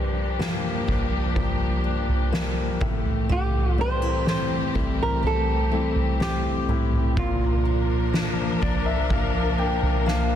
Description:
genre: pop ballad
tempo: 62 BPM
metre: 4/4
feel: straight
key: unclear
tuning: A4 = 440 Hz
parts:
  - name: flamenco guitar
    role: melody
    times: 0.0-10.0 s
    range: F4 to C5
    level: -28 LUFS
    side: right 2 dB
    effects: ping-pong delay
  - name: warm concert grand piano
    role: accompaniment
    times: 0.0-10.4 s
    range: G2 to G5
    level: -29 LUFS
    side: left 4 dB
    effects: none
  - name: warm studio string section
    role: sustained chords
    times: 0.0-10.4 s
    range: E3 to Bb4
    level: -30 LUFS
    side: left 1 dB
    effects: none
  - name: picked steel-string acoustic guitar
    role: arpeggios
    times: 0.0-10.4 s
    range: G2 to Bb4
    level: -31 LUFS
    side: left 1 dB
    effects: none
  - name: soft-mallet drum kit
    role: drums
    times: 0.4-10.3 s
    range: kick drum, snare drum, toms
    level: -24 LUFS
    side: right 1 dB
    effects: none
room: light reverb, small room ambience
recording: dense, heavily limited modern master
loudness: -21 LUFS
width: side -10 dB against mid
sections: 0.0-10.4 A section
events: grand piano fill 8.1-10.4; drum fill 10.1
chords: 0.0 Gm7; 2.8 Am7; 7.2 Bb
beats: 0.40 1.36 2.33 | 3.30 4.27 5.24 6.20 | 7.17 8.14 9.11 10.07

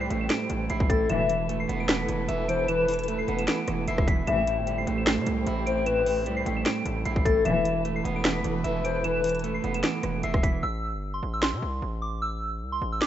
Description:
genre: hip hop, trap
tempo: 151 BPM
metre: 4/4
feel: half-time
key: A minor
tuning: A4 = 441 Hz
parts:
  - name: soft synth bell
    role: melody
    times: 0.0-13.1 s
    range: C6 to E7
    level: -33 LUFS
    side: right 2 dB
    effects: chorus, low-pass filter
  - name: electric guitar at the edge of break-up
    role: accompaniment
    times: 0.0-10.6 s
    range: A2 to E5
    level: -30 LUFS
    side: right 6 dB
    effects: low-pass filter
  - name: dark symphonic string section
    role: sustained chords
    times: 0.0-10.6 s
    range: E3 to B4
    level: -34 LUFS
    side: left 2 dB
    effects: none
  - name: distorted 808-style bass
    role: bass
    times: 0.0-13.0 s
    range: E1 to C3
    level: -32 LUFS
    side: equal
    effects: distortion
  - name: trap drum kit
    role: drums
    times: 0.1-13.1 s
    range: finger snaps, hi-hat, kick drum, rim click, snare drum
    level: -26 LUFS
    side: equal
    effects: none
  - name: hollow clarinet-like synth lead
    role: second line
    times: 0.9-9.4 s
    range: A4 to E5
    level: -28 LUFS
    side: left 5 dB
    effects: chorus, ping-pong delay
  - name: muted chamber string section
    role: stabs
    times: 1.1-1.5, 4.3-4.7, 7.5-7.8 s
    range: B1 to E3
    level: -31 LUFS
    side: left 5 dB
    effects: none
room: light reverb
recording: rough home demo mix, nothing above 7.9 kHz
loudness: -24 LUFS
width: side -11 dB against mid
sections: 0.0-10.6 A section; 10.6-13.1 B section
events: break 10.6-13.1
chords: 0.0 Am7; 1.1 Esus4; 4.3 Am7; 7.5 Esus4; 10.6 Am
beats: 0.30 0.70 | 1.09 1.49 1.89 2.29 | 2.69 3.08 3.48 3.88 | 4.27 4.67 5.07 5.47 | 5.86 6.26 6.66 7.05 | 7.45 7.85 8.25 8.64 | 9.04 9.44 9.84 10.23 | 10.63 11.03 11.43 11.82 | 12.22 12.62 13.02

